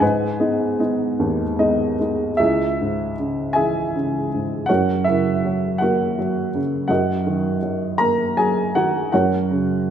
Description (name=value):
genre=classical, lyrical solo piano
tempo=50-56 BPM (dotted quarters)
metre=6/8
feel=rubato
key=C# dorian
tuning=A4 = 445 Hz
part: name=dark upright piano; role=solo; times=0.0-9.9 s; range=C#2 to A#5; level=-18 LUFS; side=right 1 dB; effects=none
room=moderate concert hall reverb, RT60 2.0 s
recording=minimal, uncompressed stereo recording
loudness=-18 LUFS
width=side -9 dB against mid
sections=0.0-2.4 A section; 2.4-9.9 B section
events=upright piano fill 1.2-2.4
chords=0.0 G#m; 2.4 C#m; 4.7 F#; 6.9 D#m/F#; 9.1 F#